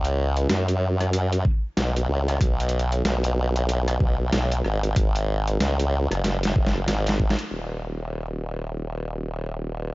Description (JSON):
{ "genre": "glitch hop", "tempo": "94 BPM", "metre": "4/4", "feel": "swing 59% on 16ths", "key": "unclear", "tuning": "A4 = 440 Hz", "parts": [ { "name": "formant-sweep wobble bass", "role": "bass", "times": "0.0-9.9 s", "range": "Eb1 to Gb2", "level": "-23 LUFS", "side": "equal", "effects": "chorus, tube saturation" }, { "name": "boom bap sampler-style drum kit", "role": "drums", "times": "0.0-7.5 s", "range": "hi-hat, rim click, snare drum", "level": "-28 LUFS", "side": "equal", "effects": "overdrive, low-pass filter on snare, low-pass filter on hats, low-pass filter on room" }, { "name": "electronic kick drum", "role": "drums", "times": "1.4-7.3 s", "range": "none", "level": "-22 LUFS", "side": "equal", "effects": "overdrive" } ], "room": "little or no reverb", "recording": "dry, gritty hardware recording, vinyl crackle, nothing above 7.6 kHz", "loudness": "-22 LUFS", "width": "side -21 dB against mid", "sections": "0.0-7.5 A section; 7.5-9.9 B section", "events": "drum fill 6.2-7.5; band accent 7.3-7.6; filter sweep on drum 7.5-9.9", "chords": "none", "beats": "0.49 1.13 1.77 | 2.41 3.05 3.69 4.33 | 4.96 5.60 6.24 6.88 | 7.52 8.15 8.79 9.43" }